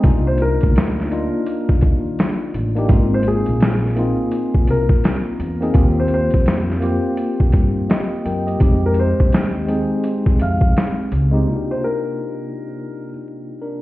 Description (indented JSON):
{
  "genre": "lo-fi hip hop",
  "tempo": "84 BPM",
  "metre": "4/4",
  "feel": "swing 61% on 16ths",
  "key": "C minor",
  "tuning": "A4 = 440 Hz",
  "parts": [
    { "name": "tine electric piano", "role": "accompaniment", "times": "0.0-13.8 s", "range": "C3 to G5", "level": "-21 LUFS", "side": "left 1 dB", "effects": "medium stereo tremolo, cassette tape, low-pass filter" },
    { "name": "upright bass", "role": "bass", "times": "0.0-11.4 s", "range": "Ab1 to G2", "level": "-20 LUFS", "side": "equal", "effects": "none" },
    { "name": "boom bap sampler-style drum kit", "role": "drums", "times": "0.0-11.3 s", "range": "hi-hat, kick drum, snare drum", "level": "-16 LUFS", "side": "equal", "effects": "vintage 12-bit sampler grit" },
    { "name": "felt-muted upright piano", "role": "melody", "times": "0.3-13.1 s", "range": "Ab4 to F5", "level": "-25 LUFS", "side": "left 2 dB", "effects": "low-pass filter, analog delay" }
  ],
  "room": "moderate studio reverb, RT60 0.6 s",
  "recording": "heard muffled through a wall, stone room reverb, vinyl crackle, EQ",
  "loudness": "-15 LUFS",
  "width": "side -17 dB against mid",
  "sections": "0.0-11.5 A section; 11.5-13.8 B section",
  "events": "none",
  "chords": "0.0 Cm11; 2.9 Ab69; 5.8 Eb6; 8.6 Fm9; 11.5 Cm11"
}